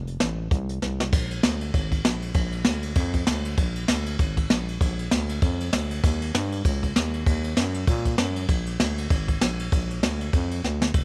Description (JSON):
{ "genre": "rockabilly", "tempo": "196 BPM", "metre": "4/4", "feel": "swing 58% on 8ths", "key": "Bb mixolydian", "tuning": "A4 = 441 Hz", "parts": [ { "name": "growling FM bass", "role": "bass", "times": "0.0-11.0 s", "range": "F1 to Bb2", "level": "-30 LUFS", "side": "equal", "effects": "none" }, { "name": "jazz brush drum kit", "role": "drums", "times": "0.1-11.0 s", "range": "crash cymbal, hi-hat, kick drum, ride cymbal, snare drum", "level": "-26 LUFS", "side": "equal", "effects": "none" } ], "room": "little or no reverb", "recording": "none", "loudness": "-25 LUFS", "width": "mono", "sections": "0.0-1.1 A section; 1.1-11.0 B section", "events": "drum fill 0.8-1.1, 10.6-10.9", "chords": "none", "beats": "0.21 0.51 0.82 | 1.12 1.43 1.74 2.04 | 2.35 2.66 2.96 3.27 | 3.58 3.89 4.19 4.50 | 4.81 5.11 5.42 5.73 | 6.04 6.34 6.65 6.96 | 7.26 7.57 7.88 8.18 | 8.49 8.80 9.11 9.41 | 9.72 10.03 10.33 10.64 | 10.95" }